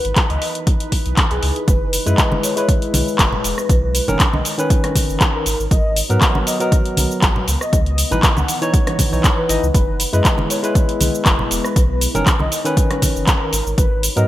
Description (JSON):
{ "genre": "deep house", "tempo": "119 BPM", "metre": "4/4", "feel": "swing 53% on 16ths", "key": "C# dorian", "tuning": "A4 = 441 Hz", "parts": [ { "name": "warm velvety synth lead", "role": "melody", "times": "0.0-14.3 s", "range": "G#4 to F#5", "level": "-26 LUFS", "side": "left 1 dB", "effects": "chorus, cassette tape, digital delay" }, { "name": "deep dark ambient pad", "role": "sustained chords", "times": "0.0-14.3 s", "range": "E3 to C#5", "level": "-30 LUFS", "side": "left 1 dB", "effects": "chorus, built-in reverb, sidechain pumping" }, { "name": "sub bass with octave", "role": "bass", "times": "0.0-14.2 s", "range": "E1 to G#2", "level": "-21 LUFS", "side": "equal", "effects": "tube saturation, sidechain pumping" }, { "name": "deep house drum kit", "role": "drums", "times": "0.0-14.3 s", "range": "cabasa, handclaps, hi-hat, rim click", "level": "-20 LUFS", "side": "equal", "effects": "gated reverb" }, { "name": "electronic kick drum", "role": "drums", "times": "0.2-13.9 s", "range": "none", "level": "-16 LUFS", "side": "equal", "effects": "none" }, { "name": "barky tine electric piano", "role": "stabs", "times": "2.1-14.3 s", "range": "D#3 to D#5", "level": "-22 LUFS", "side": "left 1 dB", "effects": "sidechain pumping, digital delay" }, { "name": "congas and bongos", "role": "percussion", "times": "2.3-13.1 s", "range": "none", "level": "-25 LUFS", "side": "right 1 dB", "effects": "none" } ], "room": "light reverb", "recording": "bright 1980s-style digital production", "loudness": "-14 LUFS", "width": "side -14 dB against mid", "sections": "0.0-14.3 A section", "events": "none", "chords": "0.0 C#m9; 1.7 F#9sus4; 3.7 Badd9; 5.5 G#m9; 7.5 C#m9; 9.7 F#9sus4; 11.8 Badd9; 13.5 G#m9" }